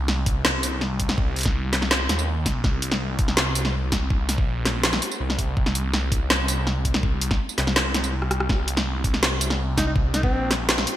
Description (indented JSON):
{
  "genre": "half-time drum and bass",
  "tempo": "164 BPM",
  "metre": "4/4",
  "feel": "half-time",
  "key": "C minor",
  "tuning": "A4 = 440 Hz",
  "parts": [
    { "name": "phased detuned saw bass", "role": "bass", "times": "0.0-10.9 s", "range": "Bb1 to Eb2", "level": "-25 LUFS", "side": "equal", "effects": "phaser" },
    { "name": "drum and bass drum kit", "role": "drums", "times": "0.1-10.9 s", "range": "hi-hat, rim click, snare drum, tambourine", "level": "-23 LUFS", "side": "equal", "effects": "overdrive, gated reverb" },
    { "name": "electronic kick drum", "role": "drums", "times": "0.3-10.3 s", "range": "none", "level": "-24 LUFS", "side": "equal", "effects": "none" },
    { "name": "warm alto saxophone", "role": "melody", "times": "9.8-10.5 s", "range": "C4 to Eb4", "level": "-27 LUFS", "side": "equal", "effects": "ping-pong delay" }
  ],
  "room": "light reverb, digital ambience",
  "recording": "bright 1980s-style digital production",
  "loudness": "-20 LUFS",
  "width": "side -13 dB against mid",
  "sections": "0.0-11.0 A section",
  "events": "break 8.1-8.5; drum fill 8.2",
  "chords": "none"
}